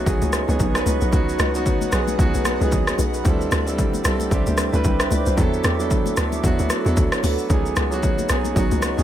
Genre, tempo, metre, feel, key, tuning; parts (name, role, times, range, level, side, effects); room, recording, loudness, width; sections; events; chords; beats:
amapiano; 113 BPM; 4/4; swing 58% on 16ths; C# phrygian; A4 = 438 Hz
warm concert grand piano; accompaniment; 0.0-9.0 s; F#3 to G5; -23 LUFS; right 2 dB
granular cloud pad; sustained chords; 0.0-9.0 s; A4 to D6; -30 LUFS; equal; built-in reverb, sidechain pumping
tight log drum bass; bass; 0.0-9.0 s; B1 to E2; -23 LUFS; equal
deep house drum kit; drums; 0.1-9.0 s; hi-hat, kick drum, rim click, shaker; -22 LUFS; equal
congas; percussion; 0.1-9.0 s; -32 LUFS; left 8 dB
light reverb; -18 LUFS; side -11 dB against mid
0.0-9.0 A section
0.0 C#9sus4; 3.3 D9sus4; 5.4 E9sus4; 7.5 C#9sus4
0.07 0.60 | 1.13 1.66 2.19 2.72 | 3.25 3.78 4.31 4.84 | 5.38 5.91 6.44 6.97 | 7.50 8.03 8.56